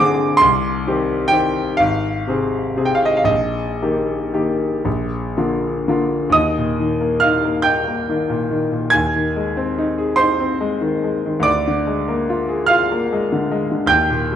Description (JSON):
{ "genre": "classical, romantic nocturne for solo piano", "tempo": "38-52 BPM (dotted quarters)", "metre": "6/8", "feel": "rubato", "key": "Eb major", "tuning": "A4 = 440 Hz", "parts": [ { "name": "clear concert grand piano", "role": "solo", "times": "0.0-14.4 s", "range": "Ab1 to Ab6", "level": "-16 LUFS", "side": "equal", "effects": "none" } ], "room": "moderate recital hall reverb, RT60 1.5 s", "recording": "none", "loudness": "-16 LUFS", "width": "side -9 dB against mid", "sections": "0.0-6.4 A section; 6.4-14.4 B section", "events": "none", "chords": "0.4 Cm; 1.8 Fm/Ab; 3.3 Eb/Bb; 4.9 Bb; 6.4 Eb; 9.0 Ab/Eb; 11.5 Bb7/D" }